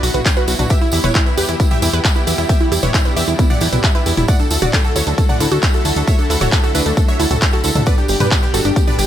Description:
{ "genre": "uplifting trance", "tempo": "134 BPM", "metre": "4/4", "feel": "straight", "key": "unclear", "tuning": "A4 = 440 Hz", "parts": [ { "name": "supersaw stab", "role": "melody", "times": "0.0-9.1 s", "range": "D4 to F#5", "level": "-21 LUFS", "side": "right 1 dB", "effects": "sidechain pumping, ping-pong delay" }, { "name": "lush unison pad", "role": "sustained chords", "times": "0.0-9.1 s", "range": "B2 to B4", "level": "-25 LUFS", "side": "left 2 dB", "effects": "chorus, sidechain pumping" }, { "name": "wide unison pluck", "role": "arpeggios", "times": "0.0-9.0 s", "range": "A3 to E5", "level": "-23 LUFS", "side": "right 2 dB", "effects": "phaser, sidechain pumping, ping-pong delay" }, { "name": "fat analog bass", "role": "bass", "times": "0.0-9.1 s", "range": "D1 to G2", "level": "-19 LUFS", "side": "equal", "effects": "sidechain pumping" }, { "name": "punchy analog drum machine", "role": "drums", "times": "0.0-9.1 s", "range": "handclaps, hi-hat, toms", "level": "-21 LUFS", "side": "left 1 dB", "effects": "sidechain pumping on hats, sidechain pumping on toms, sidechain pumping on cymbals" }, { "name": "tambourine", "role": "percussion", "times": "0.0-9.1 s", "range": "none", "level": "-27 LUFS", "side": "right 3 dB", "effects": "none" }, { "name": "electronic kick drum", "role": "drums", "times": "0.3-8.9 s", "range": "none", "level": "-15 LUFS", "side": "equal", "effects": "none" } ], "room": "digital ambience", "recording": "none", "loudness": "-13 LUFS", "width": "side -11 dB against mid", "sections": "0.0-9.1 A section", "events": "none", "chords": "0.0 Bm; 0.7 Em; 4.3 Dadd9; 7.9 G" }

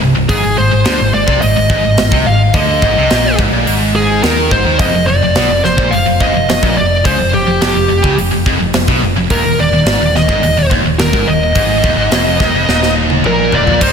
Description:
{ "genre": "heavy metal", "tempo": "106 BPM", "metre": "4/4", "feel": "straight", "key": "unclear", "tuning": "A4 = 441 Hz", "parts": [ { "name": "heavy high-gain guitar", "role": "riff", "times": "0.0-13.9 s", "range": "C2 to Eb4", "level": "-14 LUFS", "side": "equal", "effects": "distortion" }, { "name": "picked electric bass", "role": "bass", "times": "0.0-13.9 s", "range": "C1 to Eb2", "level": "-18 LUFS", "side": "equal", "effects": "none" }, { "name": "high-gain lead guitar", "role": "melody", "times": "0.3-13.9 s", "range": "G4 to F5", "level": "-14 LUFS", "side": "equal", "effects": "distortion" }, { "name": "tight metal drum kit", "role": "drums", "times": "0.3-13.9 s", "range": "crash cymbal, hi-hat, kick drum, snare drum, toms", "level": "-16 LUFS", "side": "equal", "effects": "none" } ], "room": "moderate lush hall reverb, RT60 2.1 s", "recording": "big arena sound", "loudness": "-10 LUFS", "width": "side -6 dB against mid", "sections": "0.0-13.8 A section", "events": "drum fill 12.7-13.8", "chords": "0.3 Ab5; 4.8 N.C.; 9.3 Eb5" }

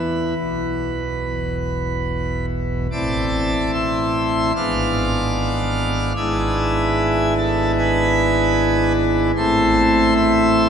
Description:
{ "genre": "classical, chorale-style piece for pipe organ", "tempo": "74 BPM", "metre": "4/4", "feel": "rubato", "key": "A minor", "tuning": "A4 = 440 Hz", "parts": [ { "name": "pipe organ, plenum", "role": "solo", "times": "0.0-10.7 s", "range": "E1 to E#6", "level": "-17 LUFS", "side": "equal", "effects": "none" } ], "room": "wet cathedral reverb, RT60 6.7 s", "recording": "none", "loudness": "-17 LUFS", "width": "side -7 dB against mid", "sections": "0.0-2.9 A section; 2.9-10.7 B section", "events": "none", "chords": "0.0 E5; 2.9 Am; 4.6 G#dim7; 6.2 E7/G#; 9.4 Am" }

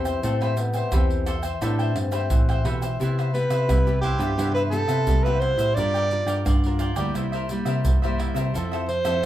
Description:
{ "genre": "samba and choro", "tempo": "87 BPM", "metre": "4/4", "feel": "straight", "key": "A minor, C major from 3.0 s", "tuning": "A4 = 440 Hz", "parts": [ { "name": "breathy trombone", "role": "second line", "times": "0.0-2.7 s", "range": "B3 to D4", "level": "-29 LUFS", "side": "left 3 dB", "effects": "none" }, { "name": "cavaquinho", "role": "accompaniment", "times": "0.0-9.3 s", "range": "E4 to G5", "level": "-31 LUFS", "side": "left 2 dB", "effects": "none" }, { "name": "nylon-string guitar", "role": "accompaniment", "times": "0.0-9.3 s", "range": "G2 to B4", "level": "-31 LUFS", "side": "equal", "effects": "none" }, { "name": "tine electric piano", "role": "bass", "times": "0.0-9.2 s", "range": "C2 to C3", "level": "-26 LUFS", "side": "equal", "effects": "overdrive" }, { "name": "egg shaker, pandeiro, surdo and tamborim", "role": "percussion", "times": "0.1-9.3 s", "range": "none", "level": "-25 LUFS", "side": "right 1 dB", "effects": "none" }, { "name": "breathy soprano saxophone", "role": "melody", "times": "3.3-9.3 s", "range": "G4 to D5", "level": "-24 LUFS", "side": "right 1 dB", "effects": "none" } ], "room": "wet small room reverb, RT60 0.5 s", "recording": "band playing live in one room", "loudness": "-20 LUFS", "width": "side -13 dB against mid", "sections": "0.0-3.0 A section; 3.0-9.3 B section", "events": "trombone solo 0.0-3.0", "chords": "0.0 Am9; 3.0 Cmaj7; 5.8 Gm7; 7.2 C7; 8.5 Fmaj7" }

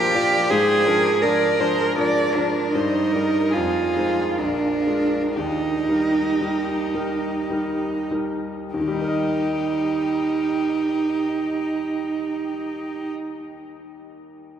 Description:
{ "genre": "classical, slow romantic movement for piano trio", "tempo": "47-83 BPM", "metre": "3/4", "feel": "rubato", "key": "Eb major", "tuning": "A4 = 440 Hz", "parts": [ { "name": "warm violin", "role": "melody", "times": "0.0-13.1 s", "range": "G4 to D5", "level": "-30 LUFS", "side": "left 4 dB", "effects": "none" }, { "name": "warm cello", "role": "second line", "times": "0.0-13.1 s", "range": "D4 to D5", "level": "-22 LUFS", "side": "right 3 dB", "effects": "none" }, { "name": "clear grand piano", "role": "accompaniment", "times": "0.0-14.6 s", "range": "Bb1 to Eb5", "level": "-26 LUFS", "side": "left 2 dB", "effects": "none" } ], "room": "wet cathedral reverb, RT60 5.8 s", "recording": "in a vast, echoing space", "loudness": "-20 LUFS", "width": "side -9 dB against mid", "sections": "0.0-8.7 A section; 8.7-12.3 B section", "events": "slowing down 1.6-8.7", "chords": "0.0 Bb; 0.5 Bb7/Ab; 2.8 Eb/G; 3.5 Fm7; 4.4 Bb7; 5.4 Eb" }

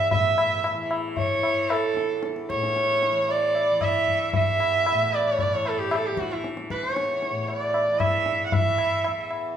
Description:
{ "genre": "indian classical, Hindustani", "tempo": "114 BPM", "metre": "4/4", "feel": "straight", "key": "unclear", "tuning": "A4 = 440 Hz", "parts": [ { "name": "rich sarangi", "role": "melody", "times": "0.0-9.3 s", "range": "E4 to F#5", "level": "-23 LUFS", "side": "right 2 dB", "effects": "none" }, { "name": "tanpura", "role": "drone", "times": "0.0-9.6 s", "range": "E2 to E3", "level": "-33 LUFS", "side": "left 2 dB", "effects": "none" }, { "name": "tabla", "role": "percussion", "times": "0.1-9.5 s", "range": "none", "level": "-28 LUFS", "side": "left 3 dB", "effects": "none" } ], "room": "wet recital hall reverb, RT60 1.5 s", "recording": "minimal, uncompressed stereo recording", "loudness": "-21 LUFS", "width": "side -9 dB against mid", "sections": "0.1-9.6 A section", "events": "none", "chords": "none" }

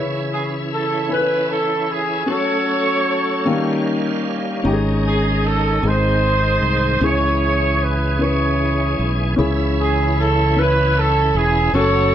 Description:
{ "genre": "slow gospel", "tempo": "51 BPM (dotted quarters)", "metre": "6/8", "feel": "straight", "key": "C# minor", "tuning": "A4 = 441 Hz", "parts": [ { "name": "warm concert grand piano", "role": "accompaniment", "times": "0.0-12.1 s", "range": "G#2 to G#5", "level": "-22 LUFS", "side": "left 2 dB", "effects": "none" }, { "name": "bright tonewheel organ", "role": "sustained chords", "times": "0.0-12.1 s", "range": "D#3 to E#5", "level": "-25 LUFS", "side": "right 2 dB", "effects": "slow rotary speaker, chorus vibrato" }, { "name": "clear horn section", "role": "melody", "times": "0.3-12.1 s", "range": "D#4 to C#5", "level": "-19 LUFS", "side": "right 1 dB", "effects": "none" }, { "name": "fingered electric bass", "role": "bass", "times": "4.6-12.1 s", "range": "E1 to C#2", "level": "-20 LUFS", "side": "right 1 dB", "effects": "none" } ], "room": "moderate large studio reverb, RT60 0.9 s, studio ambience", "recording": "nothing above 10.4 kHz", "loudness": "-16 LUFS", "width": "side -10 dB against mid", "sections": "0.0-9.4 A section; 9.4-12.1 A section", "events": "none", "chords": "0.0 C#m; 2.3 F#m; 3.5 D#9; 4.7 G#sus4; 5.8 G#; 7.0 C#m" }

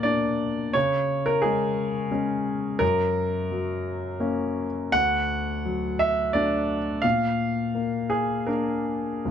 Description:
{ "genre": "neoclassical minimalist piano", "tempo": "72-89 BPM", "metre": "3/4", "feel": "rubato", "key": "unclear", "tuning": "A4 = 439 Hz", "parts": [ { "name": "warm baby grand piano", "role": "solo", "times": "0.0-9.3 s", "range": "C#2 to F#5", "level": "-23 LUFS", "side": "equal", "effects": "none" } ], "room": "little or no reverb", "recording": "close, detailed microphones", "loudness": "-23 LUFS", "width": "side -8 dB against mid", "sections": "0.0-9.3 A section", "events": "none", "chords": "0.0 A#; 0.7 C#5; 2.8 F#; 4.9 D; 7.0 A#" }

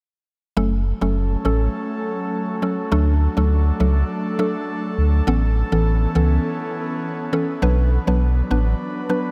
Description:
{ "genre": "dancehall", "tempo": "102 BPM", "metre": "4/4", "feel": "straight", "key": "F# minor", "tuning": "A4 = 440 Hz", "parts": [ { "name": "mallet-like synth pluck", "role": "accompaniment", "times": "0.6-9.2 s", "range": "E3 to B4", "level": "-26 LUFS", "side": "equal", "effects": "chorus, phaser" }, { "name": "airy breathy pad", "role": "sustained chords", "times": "0.9-9.3 s", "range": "E3 to B4", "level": "-28 LUFS", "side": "equal", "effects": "chorus" }, { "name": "sub bass with octave", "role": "bass", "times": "0.6-8.7 s", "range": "F#1 to D2", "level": "-20 LUFS", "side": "equal", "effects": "none" } ], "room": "moderate huge ambient reverb, RT60 7.9 s", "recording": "dreamy mix soaked in reverb", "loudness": "-20 LUFS", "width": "mono", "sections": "0.6-9.3 A section", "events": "none", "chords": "0.6 F#m; 2.9 D; 5.3 Aadd9; 7.6 Bm" }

